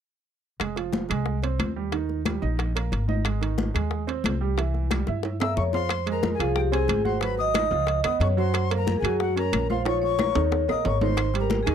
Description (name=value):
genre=Afro-Cuban jazz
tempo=182 BPM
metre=4/4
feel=straight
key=F minor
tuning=A4 = 442 Hz
part: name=clear upright piano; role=accompaniment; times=0.6-11.7 s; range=Eb3 to Gb5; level=-30 LUFS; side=right 14 dB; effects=none
part: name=upright bass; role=bass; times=0.6-11.7 s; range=F1 to G2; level=-27 LUFS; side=left 1 dB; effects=none
part: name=bongos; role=percussion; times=0.6-11.7 s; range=none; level=-34 LUFS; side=left 13 dB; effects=none
part: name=claves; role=percussion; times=0.6-11.7 s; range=none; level=-35 LUFS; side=left 21 dB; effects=none
part: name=congas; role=percussion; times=0.6-11.7 s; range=none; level=-32 LUFS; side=left 3 dB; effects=none
part: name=timbales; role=percussion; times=0.6-11.7 s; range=none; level=-32 LUFS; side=right 6 dB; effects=none
part: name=vibraphone with medium mallets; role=melody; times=5.4-11.7 s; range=Gb4 to E5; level=-26 LUFS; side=left 1 dB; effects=none
part: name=breathy bright jazz flute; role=second line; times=5.4-11.7 s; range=Gb5 to E6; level=-32 LUFS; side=left 13 dB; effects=none
room=light reverb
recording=dry, close 1970s-style studio recording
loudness=-22 LUFS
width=side -8 dB against mid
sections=0.6-5.9 A section; 5.9-11.7 B section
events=drum fill 5.1-5.9, 9.9-11.2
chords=0.6 Fm9; 1.9 Eb; 3.3 Ab; 4.6 C7; 5.9 Fm; 7.2 Ab5; 7.9 Db7; 8.5 Gb; 9.9 Bbm; 10.5 Eb5; 11.2 Ab5